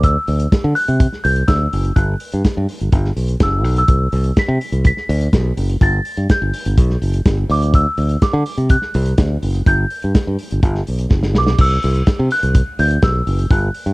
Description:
disco; 125 BPM; 4/4; straight; A4 = 440 Hz
small celesta; melody; 0.0-13.9 s; D6 to B6; -21 LUFS; equal
fingered electric bass; bass; 0.0-13.9 s; F#1 to D3; -16 LUFS; equal
warm soul drum kit; drums; 0.0-13.9 s; crash cymbal, hi-hat, kick drum, snare drum; -16 LUFS; equal
studio reverb; dark, warm production; -14 LUFS; side -23 dB against mid
0.0-11.6 A section; 11.6-13.9 A section
drum fill 11.1-11.6
0.0 D7; 2.0 Gmaj7; 3.9 Cmaj7; 5.8 N.C.; 7.5 D7; 9.7 Gmaj7; 11.6 C

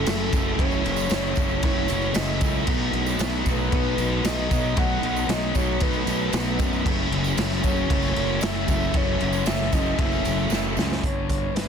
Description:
rock, shoegaze and dream pop; 115 BPM; 4/4; straight; F# dorian; A4 = 440 Hz
breathy flute-like synth lead; melody; 0.0-11.7 s; A4 to F#5; -30 LUFS; equal; chorus, digital delay
electric guitar through a small old amp; riff; 0.0-11.7 s; F#2 to E4; -31 LUFS; right 11 dB; reverse reverb
thick fuzz guitar; riff; 0.0-11.7 s; F#2 to B3; -30 LUFS; left 11 dB; distortion, wide subtle chorus
tight distorted guitar; riff; 0.0-11.0 s; F#2 to D#4; -30 LUFS; equal; distortion
fuzz fingered electric bass; bass; 0.0-11.7 s; F#1 to F#2; -28 LUFS; equal; overdrive
raw garage drum kit; drums; 0.1-11.7 s; crash cymbal, hi-hat, kick drum, snare drum; -25 LUFS; equal
tambourine; percussion; 0.1-11.0 s; -39 LUFS; right 19 dB
studio ambience; dense, heavily limited modern master; -21 LUFS; side -7 dB against mid
0.0-11.0 A section
drum fill 10.5-11.0
0.0 F#m7; 2.7 B7; 6.9 F#m7; 11.0 G

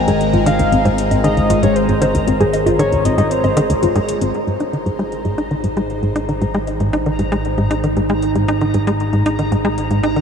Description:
ambient, sequencer-driven space music; 116 BPM; 4/4; straight; Ab major from 4.3 s; A4 = 438 Hz
soft octave-layered synth lead; melody; 0.0-3.8 s; C5 to F5; -22 LUFS; left 1 dB; chorus, shimmer reverb, ping-pong delay
evolving wavetable pad; sustained chords; 0.0-10.2 s; Ab3 to Eb5; -20 LUFS; equal; phaser, built-in reverb, shimmer reverb
warbly dusty pluck; arpeggios; 0.0-4.3 s; C4 to C5; -22 LUFS; left 2 dB; chorus, auto-pan, shimmer reverb, ping-pong delay
analog drone; bass; 0.0-10.2 s; Ab1; -23 LUFS; equal; chorus
bubbling stepped-filter texture; texture; 0.0-10.2 s; Bb5; -29 LUFS; left 3 dB; chorus, built-in reverb, shimmer reverb
tight sequencer bass; riff; 0.1-10.2 s; Ab1 to Eb4; -18 LUFS; equal; ping-pong delay
electronic hi-hat and woodblock; percussion; 0.1-10.2 s; -31 LUFS; left 5 dB; overdrive, ping-pong delay
wet huge ambient reverb, RT60 9.1 s; dark, warm production; -14 LUFS; side -7 dB against mid
0.0-4.3 A section; 4.3-10.2 B section
filter sweep on analog synth bass 0.0-4.3; fade-in on drum 4.3-10.2
0.0 Abadd9; 4.3 Ab

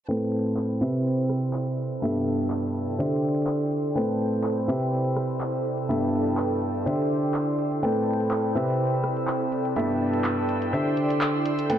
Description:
piano house; 124 BPM; 4/4; swing 54% on 16ths; A4 = 439 Hz
warm studio violin section; sustained chords; 0.1-11.8 s; C4 to G6; -34 LUFS; right 1 dB
clear grand piano; riff; 0.1-11.8 s; G2 to G5; -24 LUFS; equal; digital delay
punchy analog drum machine; drums; 0.1-11.8 s; handclaps, hi-hat, rim click; -33 LUFS; equal; studio reverb
ethereal airy pad; texture; 1.2-11.8 s; C3 to G5; -31 LUFS; right 2 dB; ensemble chorus, built-in reverb
riser; sound effects; 11.7-11.8 s; barely audible
light reverb; dark, warm production, low-pass filter, nothing above 10.8 kHz; -23 LUFS; side -10 dB against mid
0.1-11.8 A section
filter sweep 0.1-11.8
0.1 Am9; 0.8 Cmaj7; 2.0 G69; 3.0 D9sus4; 4.0 Am9; 4.7 Cmaj7; 5.9 G69; 6.9 D9sus4; 7.8 Am9; 8.6 Cmaj7; 9.8 G69; 10.7 D9sus4

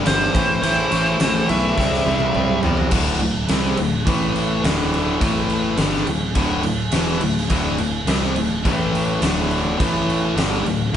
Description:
hard rock; 105 BPM; 4/4; straight; A4 = 443 Hz
cranked stack guitar; riff; 0.0-11.0 s; D2 to C4; -26 LUFS; right 4 dB; overdrive
distorted electric guitar; riff; 0.0-11.0 s; D2 to C4; -24 LUFS; left 5 dB; overdrive
distorted electric guitar; riff; 0.0-11.0 s; D2 to C4; -28 LUFS; right 1 dB; overdrive
biting lead guitar; melody; 0.1-2.6 s; C5 to E5; -21 LUFS; equal; overdrive
picked electric bass; bass; 0.1-11.0 s; D1 to E2; -25 LUFS; equal
big rock drum kit; drums; 0.1-11.0 s; crash cymbal, kick drum, ride cymbal, snare drum, toms; -22 LUFS; equal
moderate studio reverb, RT60 0.8 s; band playing live in one room, nothing above 10.8 kHz; -17 LUFS; side -9 dB against mid
0.0-2.9 A section; 2.9-11.0 B section
drum fill 1.8-2.9
0.3 Am; 1.8 C; 2.9 D5; 4.1 A5; 4.6 D5; 5.2 A5; 5.8 D5; 8.6 A5; 9.2 D5; 9.8 A5; 10.4 D5

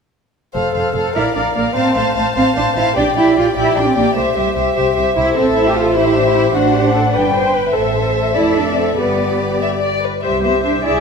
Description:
quick classical-period movement for symphony orchestra; 99 BPM (dotted quarters); 6/8; straight; F major, C major from 5.4 s; A4 = 440 Hz
dark chamber violin section; melody; 0.5-11.0 s; B4 to A5; -20 LUFS; left 4 dB
warm chamber violin section; second line; 0.5-11.0 s; G#4 to F5; -20 LUFS; left 4 dB
dark chamber viola section; accompaniment; 0.5-11.0 s; F#4 to D5; -19 LUFS; equal
dark chamber double bass section; bass; 0.5-11.0 s; F1 to C2; -23 LUFS; right 4 dB
dark symphonic cello section; bass; 1.2-11.0 s; G3 to G4; -18 LUFS; right 3 dB
moderate scoring stage reverb, RT60 1.8 s; minimal, uncompressed stereo recording; -13 LUFS; side -5 dB against mid
0.5-10.2 A section
0.5 F; 1.1 Bb; 1.8 F/A; 3.0 Gm/Bb; 4.2 C; 5.4 Am; 6.5 D7/A; 7.1 G; 7.7 Am; 8.4 Dm/F; 9.0 G; 10.2 C

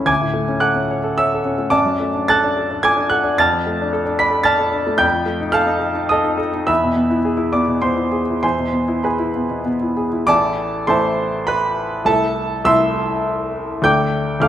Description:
classical, romantic character piece for solo piano; 95-112 BPM; 3/4; rubato; A minor from 3.4 s; A4 = 437 Hz
clear grand piano; solo; 0.0-14.5 s; A1 to B6; -16 LUFS; equal
moderate recital hall reverb, RT60 1.6 s; -16 LUFS; side -11 dB against mid
0.0-10.3 A section; 10.3-14.5 B section
0.1 Dmaj7; 1.7 D/F#; 3.4 Dm/F; 5.0 F7; 6.7 E; 10.3 Am; 12.1 Am/C; 13.8 Dm

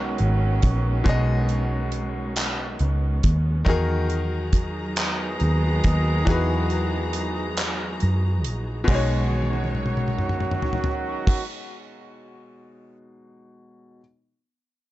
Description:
slow six-eight R&B; 46 BPM (dotted quarters); 6/8; straight; B major; A4 = 441 Hz
bright grand piano; accompaniment; 0.0-14.0 s; B2 to D#5; -30 LUFS; left 3 dB
warm studio string section; sustained chords; 0.0-11.4 s; B2 to A#5; -33 LUFS; right 1 dB
mellow horn section; stabs; 0.0-11.4 s; D#3 to G#4; -31 LUFS; right 2 dB; ping-pong delay
vintage muted fingered electric bass; bass; 0.0-11.4 s; G#1 to F#2; -24 LUFS; equal
damped 70s drum kit; drums; 0.2-13.0 s; crash cymbal, handclaps, hi-hat, kick drum, toms; -24 LUFS; equal
little or no reverb; dark, warm production, nothing above 7.9 kHz; -21 LUFS; side -16 dB against mid
0.0-8.9 A section; 8.9-11.5 B section
kick muted 7.6-8.9; drum fill 9.3-11.3
0.0 B69; 3.7 Emaj9#11; 8.9 B69

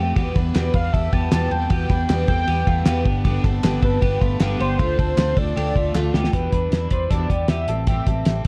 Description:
jangly indie pop; 156 BPM; 4/4; straight; A4 = 440 Hz
picked steel-string acoustic guitar; accompaniment; 0.0-8.5 s; E2 to G4; -28 LUFS; equal
twelve-string electric guitar; arpeggios; 0.0-8.4 s; A3 to B4; -33 LUFS; equal; subtle chorus
vintage muted fingered electric bass; bass; 0.0-8.5 s; G1 to F2; -26 LUFS; equal
cloth-damped thuddy drum kit; drums; 0.2-8.5 s; hi-hat, kick drum, ride cymbal, snare drum; -24 LUFS; equal
group handclap; percussion; 0.6-6.0 s; -40 LUFS; equal
warm velvety synth lead; melody; 0.7-8.4 s; B4 to A5; -28 LUFS; equal; chorus, phaser
light reverb; cassette tape; -20 LUFS; mono
0.0-6.3 A section; 6.3-8.5 B section
drum fill 5.9-6.3
0.2 Em; 3.1 G; 4.8 Dm; 6.3 Em7; 7.7 Am7

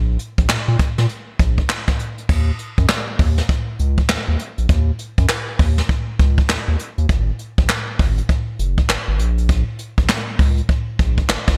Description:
R&B, new jack swing; 100 BPM; 4/4; swing 62% on 16ths; Eb minor; A4 = 440 Hz
round analog bass; bass; 0.0-11.6 s; Gb1 to Bb2; -20 LUFS; equal
jazz brush drum kit; drums; 0.2-11.6 s; crash cymbal, handclaps, hi-hat, kick drum, snare drum; -20 LUFS; equal; gated reverb
little or no reverb; bright 1980s-style digital production; -19 LUFS; mono
0.0-2.3 A section; 2.3-11.6 B section

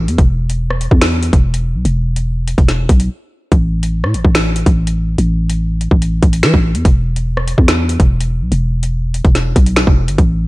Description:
hip hop, drill; 144 BPM; 4/4; half-time; A4 = 440 Hz
growling 808-style bass; bass; 0.0-10.5 s; E1 to E3; -14 LUFS; equal
drill drum kit; drums; 0.1-10.3 s; finger snaps, hi-hat, kick drum, rim click, snare drum; -13 LUFS; equal; vintage 12-bit sampler grit
little or no reverb; -12 LUFS; side -20 dB against mid
0.0-10.5 A section
break 3.1-3.5

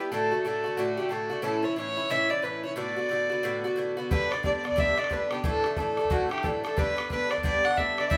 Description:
celtic folk, Celtic hornpipe; 180 BPM; 4/4; swing 61% on 8ths; A4 = 440 Hz
warm fiddle; melody; 0.0-8.2 s; F#4 to F#5; -30 LUFS; equal
Irish bouzouki; accompaniment; 0.0-8.2 s; G2 to F#4; -33 LUFS; equal
bodhran; percussion; 4.1-8.2 s; -34 LUFS; equal
light reverb; band playing live in one room; -28 LUFS; mono
0.0-4.1 A section; 4.1-8.2 A section
0.1 D; 1.4 A; 2.8 D6; 4.1 G; 5.4 Asus4; 6.8 G

